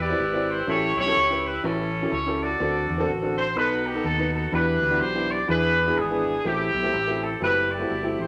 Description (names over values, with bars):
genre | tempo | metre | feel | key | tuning
uptempo gospel | 125 BPM | 4/4 | swing 61% on 8ths | unclear | A4 = 441 Hz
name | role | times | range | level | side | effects
warm horn section | melody | 0.0-8.3 s | B3 to D5 | -26 LUFS | equal | none
fingered electric bass | bass | 0.0-8.3 s | F#1 to E2 | -33 LUFS | equal | none
warm grand piano | accompaniment | 0.1-8.2 s | A2 to D5 | -30 LUFS | equal | none
room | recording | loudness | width
wet studio reverb, RT60 0.8 s | none | -24 LUFS | mono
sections
0.0-8.3 A section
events
none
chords
0.0 Cmaj7; 0.7 A7; 2.6 D7; 3.6 B7; 4.5 Em7; 5.5 E7; 6.5 Am7